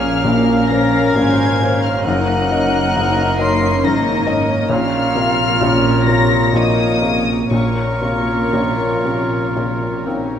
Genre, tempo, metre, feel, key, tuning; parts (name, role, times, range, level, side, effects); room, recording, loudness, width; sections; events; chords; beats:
cinematic; 58-70 BPM; 3/4; rubato; Bb minor; A4 = 440 Hz
dark chamber violin section; melody; 0.0-10.1 s; Db6 to C7; -23 LUFS; left 5 dB
clear clarinet; second line; 0.0-10.4 s; Db4 to F4; -25 LUFS; left 1 dB
mellow hollow concert flute; second line; 0.0-10.0 s; Db5 to C6; -25 LUFS; left 1 dB
mellow oboe; second line; 0.0-10.2 s; Bb4; -24 LUFS; right 1 dB
warm symphonic violin section; second line; 0.0-10.3 s; Ab4 to F5; -25 LUFS; left 3 dB
dark symphonic viola section; accompaniment; 0.0-10.4 s; C3 to C5; -23 LUFS; right 1 dB
felt-muted upright piano; accompaniment; 0.0-10.4 s; Gb1 to F5; -21 LUFS; left 2 dB
warm French horn section; sustained chords; 0.0-10.2 s; Bb3 to F4; -24 LUFS; left 5 dB
dark symphonic double bass section; bass; 0.0-10.3 s; Gb1 to Bb1; -24 LUFS; right 4 dB
warm symphonic cello section; bass; 0.0-10.3 s; Gb2 to Bb2; -25 LUFS; right 3 dB
moderate scoring stage reverb, RT60 2.1 s; -14 LUFS; side -8 dB against mid
0.0-10.4 A section
0.0 Bbmadd9; 2.0 Gb6; 4.7 Bbmadd9
0.23 1.15 | 2.05 2.95 3.83 | 4.70 5.60 6.53 | 7.51 8.54 9.56